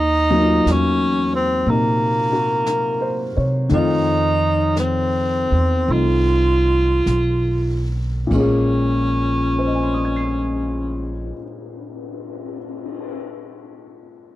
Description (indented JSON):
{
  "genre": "jazz ballad",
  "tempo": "47-61 BPM",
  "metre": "4/4",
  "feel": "swing 68% on 8ths",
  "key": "Bb minor",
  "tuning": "A4 = 437 Hz",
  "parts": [
    { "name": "clear tenor saxophone", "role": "melody", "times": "0.0-11.3 s", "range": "Bb3 to F4", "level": "-19 LUFS", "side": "equal", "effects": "none" },
    { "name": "upright bass", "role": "bass", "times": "0.0-11.3 s", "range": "Bb1 to C3", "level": "-21 LUFS", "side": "right 1 dB", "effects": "none" },
    { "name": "warm baby grand piano", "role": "accompaniment", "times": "0.3-14.4 s", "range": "Bb2 to C7", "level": "-23 LUFS", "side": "left 2 dB", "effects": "none" },
    { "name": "jazz brush drum kit", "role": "drums", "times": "0.7-13.1 s", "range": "brushed snare drum, cymbal swell, hi-hat, kick drum, ride cymbal, snare drum", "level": "-34 LUFS", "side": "left 3 dB", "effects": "none" }
  ],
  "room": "little or no reverb",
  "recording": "dry, close 1970s-style studio recording",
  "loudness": "-16 LUFS",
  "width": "side -15 dB against mid",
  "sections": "0.0-8.3 A section; 8.3-13.3 B section",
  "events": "slowing down 0.0-8.3",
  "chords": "0.0 Ebm; 3.7 F7; 8.3 Bbm9"
}